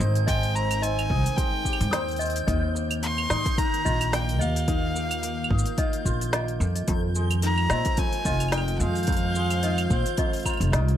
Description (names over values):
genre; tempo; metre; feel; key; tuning
folktronica; 109 BPM; 4/4; swing 56% on 16ths; Eb major; A4 = 445 Hz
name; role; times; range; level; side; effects
warbly tape-like pad; sustained chords; 0.0-11.0 s; Eb3 to C5; -35 LUFS; right 2 dB; chorus, built-in reverb
kora; arpeggios; 0.0-11.0 s; F2 to G4; -32 LUFS; left 2 dB; tape echo
upright bass; bass; 0.0-11.0 s; F1 to Bb2; -25 LUFS; equal; none
organic electronic drum kit; drums; 0.0-11.0 s; claves, hi-hat, shaker, snare drum; -30 LUFS; right 1 dB; overdrive
backwards swelling texture; texture; 0.0-11.0 s; G6; -38 LUFS; right 2 dB; built-in reverb
clear violin; melody; 0.3-10.5 s; F5 to C6; -30 LUFS; equal; tape echo
toy piano; second line; 0.3-10.9 s; Eb5 to Eb6; -35 LUFS; equal; tape echo
electronic kick drum; drums; 0.3-10.6 s; none; -27 LUFS; equal; overdrive
room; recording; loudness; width
light reverb; none; -22 LUFS; side -11 dB against mid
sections
0.0-11.0 A section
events
none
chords
0.0 Abmaj7; 2.5 Ebsus2; 6.9 Fm7